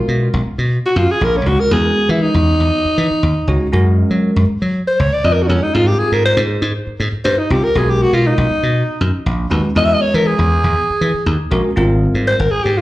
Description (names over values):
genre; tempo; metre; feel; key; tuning
jazz; 119 BPM; 4/4; straight; unclear; A4 = 438 Hz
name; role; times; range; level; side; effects
bell-like tine electric piano; accompaniment; 0.0-12.5 s; G3 to Db5; -19 LUFS; equal; phaser, slapback echo
dry thumbed slap bass; bass; 0.1-12.8 s; Ab1 to Gb3; -15 LUFS; equal; none
growling alto saxophone; melody; 0.9-12.8 s; C#4 to E5; -16 LUFS; equal; slapback echo, analog delay
room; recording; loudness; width
light reverb; live gig heard through the venue's PA, club reverb; -13 LUFS; side -16 dB against mid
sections
0.0-12.8 A section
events
alto saxophone solo 0.0-12.8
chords
0.0 Bsus2; 1.7 Emaj9; 3.7 Gbmaj9; 5.7 Abmaj9; 7.8 Bmaj9; 9.8 Eadd9; 11.8 Abmaj9